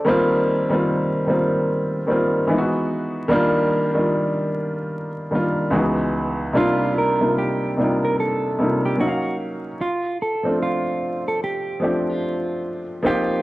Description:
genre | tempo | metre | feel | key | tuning
hip hop | 74 BPM | 4/4 | swing 62% on 16ths | unclear | A4 = 442 Hz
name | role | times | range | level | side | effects
warm upright piano | accompaniment | 0.0-13.4 s | Db2 to F5 | -19 LUFS | equal | cassette tape, low-pass filter
mellow electric guitar | melody | 6.6-13.4 s | F4 to Bb4 | -24 LUFS | right 2 dB | low-pass filter, analog delay
room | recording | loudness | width
wet spring reverb, RT60 1.1 s, small room ambience | dark, warm production, vinyl crackle | -19 LUFS | side -18 dB against mid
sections
0.0-6.6 A section; 6.6-13.4 B section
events
none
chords
0.1 F9sus4; 2.5 Emaj9; 3.3 Ebmaj9; 5.7 Dbm11; 6.6 Cm11; 9.0 Ebm7; 9.8 Dm7

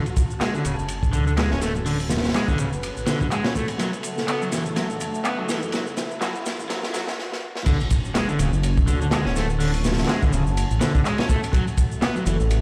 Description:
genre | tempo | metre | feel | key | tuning
breakbeat, breaks | 124 BPM | 4/4 | swing 57% on 16ths | unclear | A4 = 440 Hz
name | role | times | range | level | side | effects
phased analog pad | sustained chords | 0.0-12.6 s | C#3 to A5 | -35 LUFS | equal | phaser, chorus, sidechain pumping
crunchy overdriven guitar | riff | 0.0-12.4 s | C#3 to C#4 | -29 LUFS | equal | low-pass filter, dub echo
riser and impact | sound effects | 0.0-9.6 s | none | -39 LUFS | equal | none
crunchy breakbeat drum kit | drums | 0.1-12.6 s | crash cymbal, hi-hat, kick drum, ride cymbal, snare drum | -26 LUFS | equal | none
electronic shaker and handclaps | drums | 0.1-12.6 s | none | -36 LUFS | equal | high-pass filter on perc, high-pass filter on snare
dark detuned saw bass | bass | 0.6-12.6 s | D1 to F#2 | -27 LUFS | equal | none
congas | percussion | 1.8-7.2 s | none | -37 LUFS | equal | none
room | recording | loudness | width
light reverb, small room ambience | played on a big sound system in a bare room, stone room reverb, high-pass filter | -23 LUFS | mono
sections
0.0-7.7 A section; 7.7-12.6 B section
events
build-up 0.0-7.7; filter sweep on overdriven electric guitar 0.0-7.7; filter sweep 0.0-7.7; drum fill 3.8-7.2, 7.2-7.7; stop 7.2-7.7; drop 7.7-12.6; impact 7.7-9.6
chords
0.0 Dmaj7; 3.8 F#m; 7.7 Dmaj7; 11.5 F#m

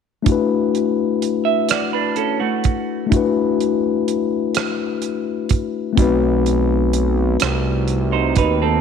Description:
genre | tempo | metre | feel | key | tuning
slow six-eight R&B | 42 BPM (dotted quarters) | 6/8 | straight | D major | A4 = 440 Hz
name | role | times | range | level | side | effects
mellow tine electric piano | accompaniment | 0.2-8.8 s | A3 to B4 | -19 LUFS | left 6 dB | none
damped 70s drum kit | drums | 0.3-8.6 s | hi-hat, kick drum, rim click | -20 LUFS | right 5 dB | none
semi-hollow electric guitar | second line | 1.4-3.8, 8.1-8.8 s | A3 to E5 | -21 LUFS | right 11 dB | none
fat analog bass | bass | 6.0-8.8 s | B1 to D#2 | -19 LUFS | right 2 dB | none
room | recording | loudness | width
moderate echo chamber reverb, RT60 2.1 s | 1960s-style stereo with parts hard left and right | -16 LUFS | side -6 dB against mid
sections
0.3-8.8 A section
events
none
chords
0.3 D69; 6.0 B7b9

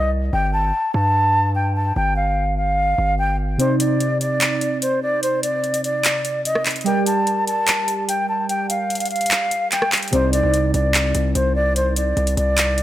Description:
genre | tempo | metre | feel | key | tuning
hip hop, trap | 147 BPM | 4/4 | half-time | unclear | A4 = 444 Hz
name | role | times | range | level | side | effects
breathy mellow concert flute | melody | 0.0-12.8 s | C5 to A5 | -20 LUFS | equal | digital delay
distorted 808-style bass | bass | 0.0-3.6, 10.1-12.8 s | G1 to G2 | -21 LUFS | equal | distortion
warbly lo-fi synth keys | accompaniment | 3.6-12.8 s | C3 to D5 | -24 LUFS | right 2 dB | chorus
trap drum kit | drums | 3.6-12.8 s | handclaps, hi-hat, rim click | -21 LUFS | equal | none
room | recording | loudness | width
light reverb, digital ambience | none | -17 LUFS | side -13 dB against mid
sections
0.0-12.8 A section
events
kick muted 3.6-10.1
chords
0.3 Fadd9/G; 3.6 Cmadd9; 6.9 Gm; 10.1 Cmadd9

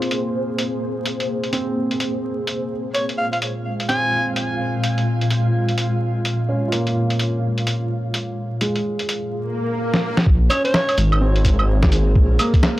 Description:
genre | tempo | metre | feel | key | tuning
future garage | 127 BPM | 4/4 | swing 61% on 16ths | Bb minor | A4 = 439 Hz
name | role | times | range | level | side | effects
felt-muted upright piano | accompaniment | 0.0-12.8 s | Ab3 to F4 | -27 LUFS | right 1 dB | sidechain pumping, analog delay
ethereal airy pad | sustained chords | 0.0-12.8 s | Bb2 to F5 | -23 LUFS | equal | ensemble chorus, built-in reverb, tremolo, sidechain pumping
lo-fi sampler-style drum kit | drums | 0.0-12.8 s | cabasa, claves, hi-hat, snare drum | -22 LUFS | equal | none
growling alto saxophone | melody | 2.9-4.3, 10.5-11.0 s | Db5 to Ab5 | -24 LUFS | equal | tape echo
swell | sound effects | 9.4-10.3 s | none | -24 LUFS | equal | none
swelling detuned saw bass | bass | 10.3-12.4 s | Ab1 to Bb1 | -16 LUFS | equal | sidechain pumping
electronic kick drum | drums | 10.3-12.6 s | none | -16 LUFS | equal | none
room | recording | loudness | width
little or no reverb | dry, gritty hardware recording, vinyl crackle | -18 LUFS | side -16 dB against mid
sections
0.0-10.3 A section; 10.3-12.8 B section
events
filter sweep on drum 0.0-10.3; swell 9.4-10.3; drum fill 9.9-10.3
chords
0.0 Bbsus2; 2.7 Db/Bb; 10.3 Bbm9

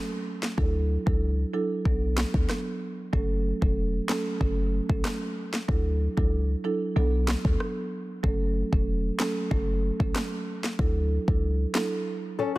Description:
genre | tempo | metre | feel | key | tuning
dancehall | 94 BPM | 4/4 | straight | F# minor | A4 = 440 Hz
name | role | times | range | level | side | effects
afro-pop drum kit | drums | 0.4-11.9 s | handclaps, kick drum, rim click, snare drum | -28 LUFS | equal | none
marimba with soft mallets | accompaniment | 0.6-11.9 s | F#3 to A4 | -30 LUFS | right 2 dB | sidechain pumping
warm 808-style bass | bass | 0.6-11.7 s | E1 to D2 | -26 LUFS | equal | none
flamenco guitar | arpeggios | 12.4-12.6 s | C#4 to A4 | -24 LUFS | left 6 dB | none
room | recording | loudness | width
little or no reverb | dense, heavily limited modern master | -24 LUFS | side -19 dB against mid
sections
0.0-12.6 A section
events
break 12.1-12.6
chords
0.0 N.C.; 0.6 Dadd9; 1.9 Bm7; 3.1 F#m; 5.7 Dadd9; 7.0 Bm7; 8.2 F#m; 10.8 Dadd9; 12.1 N.C.

